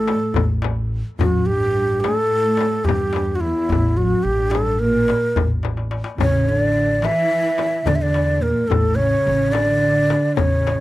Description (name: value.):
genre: Turkish makam ensemble.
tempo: 216 BPM (eighths).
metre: 9/8.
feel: straight.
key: A makam hicaz.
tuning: A4 = 440 Hz.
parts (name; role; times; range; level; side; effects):
breathy ney; melody; 0.0-10.8 s; E4 to E5; -19 LUFS; equal; none.
dark studio cello section; second line; 0.0-10.8 s; E2 to E3; -23 LUFS; right 2 dB; none.
upright bass; bass; 0.0-10.8 s; A1 to E2; -23 LUFS; equal; none.
darbuka; percussion; 0.1-10.8 s; none; -24 LUFS; left 1 dB; none.
frame drum; percussion; 0.1-10.8 s; none; -26 LUFS; left 7 dB; none.
room: small room ambience.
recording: dry, close 1970s-style studio recording.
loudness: -16 LUFS.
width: side -16 dB against mid.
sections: 0.0-10.8 A section.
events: drum fill 5.6-6.2.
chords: none.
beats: 0.09 0.36 0.64 0.92 | 1.20 1.48 1.75 2.03 2.31 2.59 2.87 3.14 3.42 | 3.70 3.98 4.25 4.53 4.81 5.09 5.37 5.64 5.92 | 6.20 6.48 6.76 7.03 7.31 7.59 7.87 8.14 8.42 | 8.70 8.98 9.26 9.54 9.81 10.09 10.37 10.65.